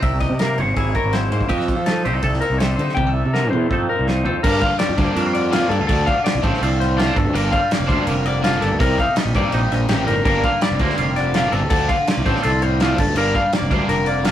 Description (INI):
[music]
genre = math rock and midwest emo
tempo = 165 BPM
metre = 4/4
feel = straight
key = G minor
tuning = A4 = 439 Hz
[part]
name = twangy electric guitar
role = accompaniment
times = 0.0-14.3 s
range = G2 to C#5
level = -24 LUFS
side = right 2 dB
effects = phaser
[part]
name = clean electric guitar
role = arpeggios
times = 0.0-14.3 s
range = F4 to G5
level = -22 LUFS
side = left 4 dB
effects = none
[part]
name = fuzz fingered electric bass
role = bass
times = 0.0-14.3 s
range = F1 to F3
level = -21 LUFS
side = equal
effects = overdrive
[part]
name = loose indie drum kit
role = drums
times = 0.0-14.3 s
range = crash cymbal, kick drum, ride cymbal, snare drum, toms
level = -23 LUFS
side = equal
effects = none
[part]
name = crunchy overdriven guitar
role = riff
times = 4.4-14.3 s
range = C3 to Eb4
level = -26 LUFS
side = equal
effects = none
[sound]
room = moderate small room reverb, RT60 0.5 s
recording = rough rehearsal-room recording, warm saturation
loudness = -16 LUFS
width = side -11 dB against mid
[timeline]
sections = 0.0-4.4 A section; 4.4-14.3 B section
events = drum fill 3.0-4.4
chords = 0.0 C7alt; 1.5 F7; 3.0 C13; 3.7 F7; 4.4 Gm7; 5.9 Dm7; 7.2 Gm7; 8.8 Cm7; 10.3 Gm7; 11.7 Dm7; 13.0 Gm7